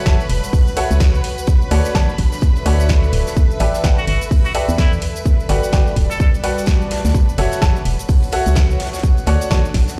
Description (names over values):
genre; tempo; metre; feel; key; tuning
piano house; 127 BPM; 4/4; swing 59% on 16ths; unclear; A4 = 442 Hz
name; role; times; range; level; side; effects
string machine, violins; sustained chords; 0.0-10.0 s; B4 to B5; -34 LUFS; equal; ensemble chorus, vintage 12-bit sampler grit, sidechain pumping
clear upright piano; riff; 0.0-9.7 s; F#4 to A5; -25 LUFS; equal; sidechain pumping, digital delay
warbly tape-like pad; texture; 0.0-10.0 s; G3 to B5; -31 LUFS; equal; chorus, built-in reverb, phaser, sidechain pumping
organ-like FM bass; bass; 0.1-9.9 s; D1 to E2; -19 LUFS; equal; sidechain pumping
electronic kick drum; drums; 0.1-9.9 s; none; -17 LUFS; equal; none
house drum kit; drums; 0.1-10.0 s; cabasa, hi-hat, snare drum; -29 LUFS; equal; none
tight metal drum kit; drums; 0.1-10.0 s; hi-hat, ride cymbal, snare drum; -38 LUFS; equal; none
tambourine; percussion; 0.1-10.0 s; none; -41 LUFS; equal; none
trumpet with straight mute; melody; 4.0-6.3 s; E4 to A4; -28 LUFS; equal; digital delay
room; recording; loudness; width
light reverb, studio reverb; played on a big sound system in a bare room, large studio reverb; -16 LUFS; mono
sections
0.0-10.0 A section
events
none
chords
0.0 F#m7; 1.2 Dmaj7; 3.4 A9sus4; 5.0 Gmaj7; 7.1 F#m7; 8.8 Dmaj7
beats
0.06 0.53 1.00 | 1.48 1.95 2.42 2.89 | 3.37 3.84 4.31 4.78 | 5.25 5.73 6.20 6.67 | 7.14 7.62 8.09 8.56 | 9.04 9.51 9.98